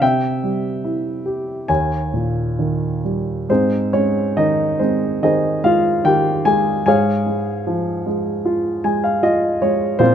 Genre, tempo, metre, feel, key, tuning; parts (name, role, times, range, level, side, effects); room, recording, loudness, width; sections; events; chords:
classical, lyrical solo piano; 64-79 BPM; 4/4; rubato; Ab major from 3.5 s; A4 = 436 Hz
dark grand piano; solo; 0.0-10.1 s; Eb2 to Ab5; -16 LUFS; equal
light reverb; close, detailed microphones; -16 LUFS; side -9 dB against mid
0.0-3.5 A section; 3.5-10.1 B section
grand piano fill 8.5-10.0
0.0 C; 1.7 Eb7; 3.5 Ab; 6.9 Db/Ab